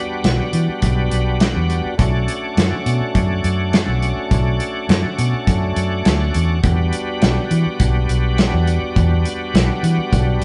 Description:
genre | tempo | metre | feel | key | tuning
straight-eighth soul blues | 103 BPM | 4/4 | straight | unclear | A4 = 440 Hz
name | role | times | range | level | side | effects
bright tonewheel organ | accompaniment | 0.0-10.4 s | G3 to F#4 | -25 LUFS | equal | slow rotary speaker, overdrive, chorus vibrato
vintage muted fingered electric bass | bass | 0.2-10.4 s | B1 to E3 | -20 LUFS | equal | none
warm soul drum kit | drums | 0.2-10.4 s | hi-hat, kick drum, snare drum | -21 LUFS | equal | none
room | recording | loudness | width
light reverb | band playing live in one room, nothing above 11.0 kHz | -18 LUFS | mono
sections
0.0-10.4 A section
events
none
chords
0.0 Em9; 2.0 Bm9; 6.6 Em9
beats
0.25 0.83 1.41 | 1.99 2.57 3.15 3.73 | 4.31 4.90 5.48 6.06 | 6.64 7.22 7.80 8.38 | 8.97 9.55 10.13

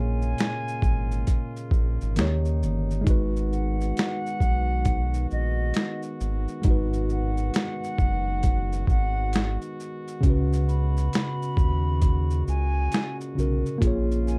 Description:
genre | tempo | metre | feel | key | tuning
lo-fi hip hop | 67 BPM | 4/4 | swing 64% on 16ths | G# dorian | A4 = 438 Hz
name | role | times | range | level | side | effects
breathy silver concert flute | melody | 0.0-14.4 s | D#5 to B5 | -35 LUFS | equal | low-pass filter
mellow tine electric piano | accompaniment | 0.0-14.4 s | A#2 to C#5 | -33 LUFS | equal | cassette tape, low-pass filter
warm brass ensemble | sustained chords | 0.0-14.4 s | A#2 to F#4 | -39 LUFS | equal | low-pass filter
round analog bass | bass | 0.0-14.4 s | F#1 to D#2 | -28 LUFS | equal | none
boom bap sampler-style drum kit | drums | 0.2-14.4 s | finger snaps, hi-hat, kick drum, shaker, snare drum | -26 LUFS | equal | none
room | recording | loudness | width
little or no reverb | dark, warm production | -25 LUFS | mono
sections
0.0-14.4 A section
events
none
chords
0.0 A#m7; 2.2 D#7; 3.1 G#m7; 10.2 C#7sus4; 13.8 A#m7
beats
0.38 1.28 2.17 | 3.07 3.96 4.86 5.75 | 6.65 7.55 8.44 9.34 | 10.23 11.13 12.02 12.92 | 13.81

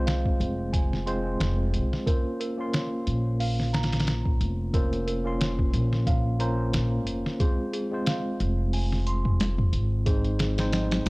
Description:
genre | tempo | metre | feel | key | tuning
trip hop | 90 BPM | 4/4 | swing 56% on 16ths | Bb minor | A4 = 439 Hz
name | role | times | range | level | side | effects
tine electric piano | accompaniment | 0.0-11.1 s | Ab3 to C6 | -30 LUFS | equal | harmonic tremolo, tape echo
small celesta | arpeggios | 0.0-11.1 s | Ab4 to C6 | -37 LUFS | right 2 dB | tape echo
upright bass | bass | 0.0-11.1 s | F1 to C2 | -27 LUFS | equal | tube saturation
trip hop sampler-style drum kit | drums | 0.1-11.1 s | hi-hat, kick drum, snare drum | -26 LUFS | equal | vintage 12-bit sampler grit, small room ambience
room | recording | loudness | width
small room ambience | dry, gritty hardware recording | -24 LUFS | side -24 dB against mid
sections
0.0-11.1 A section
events
none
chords
0.0 Fm; 2.1 Bbmadd9; 7.4 Fm; 10.1 Ab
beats
0.07 0.73 1.40 | 2.07 2.73 3.40 4.07 | 4.74 5.40 6.07 6.74 | 7.40 8.07 8.73 9.40 | 10.07 10.73

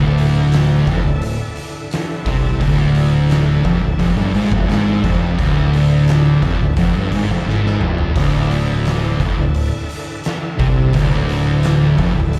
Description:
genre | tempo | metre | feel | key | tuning
stoner and doom metal | 86 BPM | 4/4 | straight | D minor | A4 = 437 Hz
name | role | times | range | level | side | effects
bright tonewheel organ | sustained chords | 0.0-12.4 s | D3 to A4 | -31 LUFS | equal | slow rotary speaker, chorus vibrato
thick fuzz guitar | riff | 0.0-12.4 s | D2 to C3 | -24 LUFS | equal | none
thick fuzz guitar | riff | 0.0-12.4 s | D2 to C3 | -19 LUFS | equal | distortion
growling fingered electric bass | bass | 0.0-12.4 s | D1 to C2 | -23 LUFS | equal | overdrive, tube saturation
oversized low-tuned drum kit | drums | 0.2-12.4 s | hi-hat, kick drum, snare drum, splash cymbal, toms | -24 LUFS | equal | none
room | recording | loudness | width
studio reverb | live gig heard through the venue's PA, club reverb | -16 LUFS | mono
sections
0.0-12.4 A section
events
drum fill 7.5-8.2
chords
0.0 Dm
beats
0.54 1.23 1.92 | 2.62 3.31 4.00 4.70 | 5.39 6.08 6.78 7.47 | 8.17 8.86 9.56 10.25 | 10.95 11.65 12.34

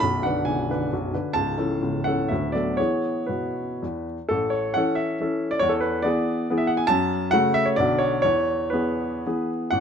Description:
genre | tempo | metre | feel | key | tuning
classical, romantic triple-time dance for piano with dotted rhythms | 111-151 BPM | 3/4 | rubato | A major | A4 = 440 Hz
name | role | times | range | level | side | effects
clear baby grand piano | solo | 0.0-9.8 s | B0 to B5 | -21 LUFS | equal | none
room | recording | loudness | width
light reverb | close, detailed microphones | -21 LUFS | side -7 dB against mid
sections
0.0-4.3 A section; 4.3-9.8 B section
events
none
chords
0.0 G#dim/B; 1.4 A/C#; 2.3 Bm7/D; 2.8 E; 4.3 A; 5.6 E7; 6.9 F#m; 7.8 Bm; 8.2 E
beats
| 0.03 0.48 0.93 | 1.35 1.81 2.31 | 2.78 3.29 3.82 | 4.30 4.76 5.21 | 5.63 6.05 6.50 | 6.90 7.33 7.79 | 8.24 8.73 9.25 | 9.72

